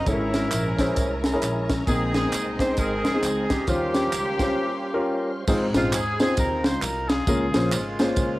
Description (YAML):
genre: uptempo gospel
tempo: 133 BPM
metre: 4/4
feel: swing 61% on 8ths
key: Ab major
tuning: A4 = 440 Hz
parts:
  - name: clear alto saxophone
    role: melody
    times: 0.0-5.3 s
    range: F4 to Db5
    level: -30 LUFS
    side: right 2 dB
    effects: cassette tape, analog delay
  - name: warm horn section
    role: melody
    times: 0.0-8.4 s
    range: Ab3 to C5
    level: -29 LUFS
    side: equal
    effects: cassette tape
  - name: rich studio string section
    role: sustained chords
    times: 0.0-5.5 s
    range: Db4 to C6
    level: -37 LUFS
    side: left 1 dB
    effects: cassette tape
  - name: tonewheel organ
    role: sustained chords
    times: 0.0-5.5 s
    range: G3 to C5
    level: -34 LUFS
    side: right 2 dB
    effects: overdrive, chorus vibrato, slow rotary speaker, cassette tape
  - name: upright bass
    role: bass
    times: 0.0-8.4 s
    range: Ab1 to Eb2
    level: -30 LUFS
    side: equal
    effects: none
  - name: warm concert grand piano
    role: accompaniment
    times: 0.1-8.4 s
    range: Ab2 to C5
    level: -26 LUFS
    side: left 1 dB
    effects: cassette tape
  - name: crisp fusion drum kit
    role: drums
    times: 0.1-8.3 s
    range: crash cymbal, hi-hat, kick drum, ride cymbal, snare drum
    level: -26 LUFS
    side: equal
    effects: cassette tape
  - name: tambourine and handclaps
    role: percussion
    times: 0.1-8.3 s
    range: none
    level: -34 LUFS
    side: right 4 dB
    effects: none
room: light reverb, studio ambience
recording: home recording on cassette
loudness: -21 LUFS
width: side -18 dB against mid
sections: 0.0-5.5 A section; 5.5-8.4 B section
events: break 4.6-5.5; grand piano fill 8.2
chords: 0.1 Dbm6/Ab; 1.9 Bb9sus4; 3.7 Eb13; 5.5 Ab6; 7.3 Db6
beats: | 0.07 0.52 0.97 1.42 | 1.87 2.32 2.77 3.23 | 3.68 4.13 4.58 5.03 | 5.48 5.93 6.38 6.82 | 7.27 7.72 8.17